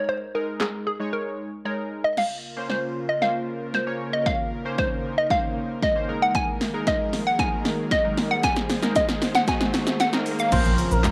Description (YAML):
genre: dance-pop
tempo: 115 BPM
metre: 4/4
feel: straight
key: Bb minor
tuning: A4 = 440 Hz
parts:
  - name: hollow square pluck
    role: melody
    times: 0.0-10.6 s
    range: Ab4 to Ab5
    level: -27 LUFS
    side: equal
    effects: chorus, slapback echo
  - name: warm analog keys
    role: accompaniment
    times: 0.0-11.1 s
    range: F3 to Db5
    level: -33 LUFS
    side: equal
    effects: chorus, sidechain pumping
  - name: punchy analog drum machine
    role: drums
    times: 0.6-11.1 s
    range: crash cymbal, handclaps, hi-hat, kick drum, shaker, snare drum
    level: -28 LUFS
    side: equal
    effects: overdrive
  - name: airy breathy pad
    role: sustained chords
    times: 2.4-11.1 s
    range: Db3 to C5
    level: -34 LUFS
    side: equal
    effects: chorus, sidechain pumping
  - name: riser and impact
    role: sound effects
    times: 6.5-11.1 s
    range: none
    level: -37 LUFS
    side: equal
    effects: none
  - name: expressive portamento lead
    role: melody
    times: 10.5-11.0 s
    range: Bb4 to C5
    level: -29 LUFS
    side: equal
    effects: chorus, sidechain pumping, slapback echo
  - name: warm sub bass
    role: bass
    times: 10.5-11.1 s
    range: Bb1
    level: -25 LUFS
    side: equal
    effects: sidechain pumping
room: light reverb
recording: faint mains hum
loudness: -24 LUFS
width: mono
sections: 0.0-2.2 A section; 2.2-10.5 B section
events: drums muted 1.7-2.2; build-up 2.2-10.5; drum fill 2.2-10.5; impact 10.5-11.1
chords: 0.0 Absus2; 2.2 Bbmadd9; 6.1 Absus2; 10.5 Bbmadd9